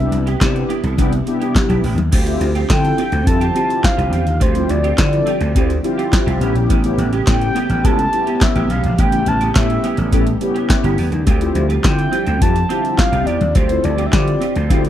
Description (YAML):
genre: early-eighties boogie funk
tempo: 105 BPM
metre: 4/4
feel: straight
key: D dorian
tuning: A4 = 440 Hz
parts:
  - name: mellow horn-like synth lead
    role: melody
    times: 0.0-14.7 s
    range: C5 to A5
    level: -21 LUFS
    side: equal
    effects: chorus, tape echo
  - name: mellow synth brass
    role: accompaniment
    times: 0.0-14.8 s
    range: B3 to A4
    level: -22 LUFS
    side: left 3 dB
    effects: chorus
  - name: string machine, full ensemble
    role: sustained chords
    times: 0.0-14.9 s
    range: C3 to G4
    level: -26 LUFS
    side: equal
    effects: ensemble chorus
  - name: semi-hollow electric guitar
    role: riff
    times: 0.0-14.9 s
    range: B3 to A4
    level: -26 LUFS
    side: right 7 dB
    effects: ensemble chorus
  - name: vintage slap bass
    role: bass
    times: 0.0-14.9 s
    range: G1 to D3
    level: -18 LUFS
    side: equal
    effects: none
  - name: electro analog drum machine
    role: drums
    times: 0.1-14.9 s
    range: crash cymbal, handclaps, hi-hat, kick drum, snare drum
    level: -17 LUFS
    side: equal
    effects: none
  - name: congas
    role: percussion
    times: 0.1-2.1, 11.3-14.8 s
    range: none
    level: -26 LUFS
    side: left 5 dB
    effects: none
room: little or no reverb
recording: dry, close 1970s-style studio recording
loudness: -14 LUFS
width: side -11 dB against mid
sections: 0.0-2.1 A section; 2.1-14.9 A section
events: none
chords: 0.0 Cmaj7; 2.1 Dm11; 6.4 A9; 11.3 Dm11